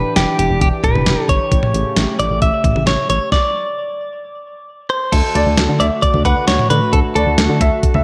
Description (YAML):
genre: synth-pop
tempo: 133 BPM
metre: 4/4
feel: straight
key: unclear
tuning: A4 = 439 Hz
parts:
  - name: direct-recorded clean electric guitar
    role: melody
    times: 0.0-8.0 s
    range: G4 to E5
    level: -21 LUFS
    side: equal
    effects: spring reverb, delay
  - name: warm analog pad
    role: sustained chords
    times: 0.0-8.0 s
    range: C#3 to G4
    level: -26 LUFS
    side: equal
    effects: chorus
  - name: solid FM bass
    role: bass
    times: 0.0-8.0 s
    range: E1 to D3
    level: -20 LUFS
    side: equal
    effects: none
  - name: clean 12-bit digital drum machine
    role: drums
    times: 0.2-8.0 s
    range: crash cymbal, hi-hat, kick drum, snare drum, toms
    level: -19 LUFS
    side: equal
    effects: gated reverb
  - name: warm baby grand piano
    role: second line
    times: 5.4-8.0 s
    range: D5 to F#5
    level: -24 LUFS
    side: equal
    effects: delay
room: light reverb, digital ambience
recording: none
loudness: -16 LUFS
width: mono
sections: 0.0-5.1 A section; 5.1-8.0 B section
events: stop 3.3-5.1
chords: 0.0 Em7; 1.5 A7; 3.3 N.C.; 5.1 D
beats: 0.16 0.61 1.06 | 1.52 1.97 2.42 2.87 | 3.32 3.77 4.22 4.67 | 5.12 5.58 6.03 6.48 | 6.93 7.38 7.83